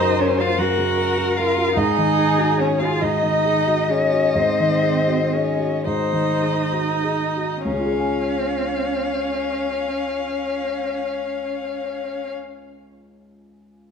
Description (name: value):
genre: classical, slow romantic movement for piano quartet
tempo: 30-52 BPM (dotted quarters)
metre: 12/8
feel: rubato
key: Db major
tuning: A4 = 440 Hz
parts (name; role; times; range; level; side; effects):
- warm violin; melody; 0.0-12.3 s; C5 to Gb5; -26 LUFS; left 9 dB; none
- rich cello; second line; 0.0-12.3 s; C4 to Gb4; -24 LUFS; right 7 dB; none
- warm violin; second line; 0.0-12.3 s; Ab4 to F5; -24 LUFS; left 4 dB; none
- warm grand piano; accompaniment; 0.0-13.9 s; Db2 to Ab5; -23 LUFS; left 1 dB; none
room: moderate recital hall reverb, RT60 1.8 s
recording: minimal, uncompressed stereo recording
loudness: -18 LUFS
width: side -6 dB against mid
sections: 0.0-7.7 A section; 7.7-13.9 B section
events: slowing down 0.0-7.7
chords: 0.0 Gb; 1.8 Ab5; 7.7 Db